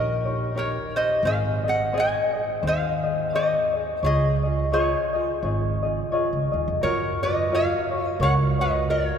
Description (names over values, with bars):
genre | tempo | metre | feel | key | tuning
Hawaiian | 86 BPM | 4/4 | swing 58% on 8ths | Db major | A4 = 439 Hz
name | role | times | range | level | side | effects
lap resonator guitar | melody | 0.0-9.2 s | Ab4 to Ab5 | -25 LUFS | equal | none
tenor ukulele | accompaniment | 0.0-9.2 s | C4 to Eb5 | -25 LUFS | left 2 dB | none
upright bass | bass | 0.0-9.1 s | Ab1 to F#2 | -26 LUFS | right 1 dB | none
room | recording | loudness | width
wet cathedral reverb, RT60 5.1 s | recorded in a church or concert hall | -21 LUFS | side -7 dB against mid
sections
0.0-6.8 A section; 6.8-9.2 B section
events
none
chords
0.0 Eb7; 1.2 Ab; 4.0 Dbadd9; 6.8 F#maj7